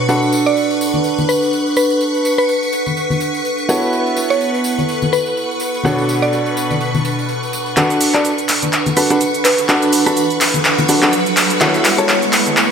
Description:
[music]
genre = piano house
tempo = 125 BPM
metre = 4/4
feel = swing 57% on 16ths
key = B minor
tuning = A4 = 440 Hz
[part]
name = string machine, violins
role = sustained chords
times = 0.0-12.7 s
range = B4 to C#6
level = -21 LUFS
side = equal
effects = ensemble chorus
[part]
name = bright upright piano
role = riff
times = 0.0-12.1 s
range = B2 to A5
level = -19 LUFS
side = equal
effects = low-pass filter, digital delay
[part]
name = warbly tape-like pad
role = texture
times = 0.0-12.7 s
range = B2 to C#6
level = -22 LUFS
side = right 2 dB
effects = chorus, built-in reverb
[part]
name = punchy analog drum machine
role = drums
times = 0.1-12.7 s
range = cabasa, handclaps, hi-hat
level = -16 LUFS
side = equal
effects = high-pass filter on cymbals, low-pass filter on cymbals, high-pass filter on perc, low-pass filter on perc, high-pass filter on snare, low-pass filter on snare, high-pass filter on hats, low-pass filter on hats
[part]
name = tambourine and congas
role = percussion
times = 0.1-12.7 s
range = none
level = -24 LUFS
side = left 3 dB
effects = none
[part]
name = mallet-like synth pluck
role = melody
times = 0.5-12.1 s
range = B4 to D5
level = -20 LUFS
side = equal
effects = chorus, digital delay
[part]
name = riser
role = sound effects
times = 9.2-12.7 s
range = none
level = -24 LUFS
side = right 3 dB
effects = none
[sound]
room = moderate lush hall reverb, RT60 1.8 s, digital ambience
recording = high-pass filter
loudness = -13 LUFS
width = side -7 dB against mid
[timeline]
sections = 0.0-7.8 A section; 7.8-12.7 B section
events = build-up 7.8-12.7; drum fill 7.8-12.7; riser 9.2-12.7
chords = 0.1 Bm7; 3.7 F#m7/B; 5.8 Dmaj7/B; 7.8 Bm7; 11.4 F#m7/B

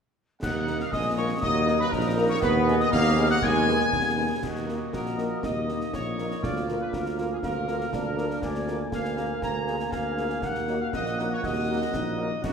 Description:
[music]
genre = military-style march for wind band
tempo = 120 BPM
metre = 2/4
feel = straight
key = Eb minor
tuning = A4 = 441 Hz
[part]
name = clear trumpet section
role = melody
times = 0.4-12.5 s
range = Gb4 to Bb5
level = -31 LUFS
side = left 1 dB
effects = none
[part]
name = mellow woodwind section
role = second line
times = 0.4-12.5 s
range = Bb3 to Ab5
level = -33 LUFS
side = left 2 dB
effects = none
[part]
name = piccolo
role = second line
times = 0.4-4.4 s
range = Bb5 to Ab6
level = -31 LUFS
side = left 3 dB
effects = none
[part]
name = bright trombone section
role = sustained chords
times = 0.4-12.5 s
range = Eb3 to Eb4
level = -35 LUFS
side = right 3 dB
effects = none
[part]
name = mellow tuba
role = bass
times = 0.4-12.5 s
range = Bb1 to Gb2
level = -28 LUFS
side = right 1 dB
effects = none
[part]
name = concert snare drum, clash cymbals and concert bass drum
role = drums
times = 0.4-12.5 s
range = none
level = -36 LUFS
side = left 1 dB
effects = none
[part]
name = warm French horn section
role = accompaniment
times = 0.7-12.3 s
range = Bb3 to Bb4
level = -34 LUFS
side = left 1 dB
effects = none
[part]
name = clear euphonium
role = second line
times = 4.9-12.5 s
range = Bb3 to Gb4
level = -33 LUFS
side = right 4 dB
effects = none
[sound]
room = wet scoring stage reverb, RT60 2.0 s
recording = minimal, uncompressed stereo recording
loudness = -24 LUFS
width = side -6 dB against mid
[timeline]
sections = 0.4-4.4 A section; 4.4-12.5 B section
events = none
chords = 0.4 Ebm; 2.4 Abm/Eb; 4.4 Ebm; 6.4 Bb/D; 8.4 Bb7/D; 10.4 Ebm

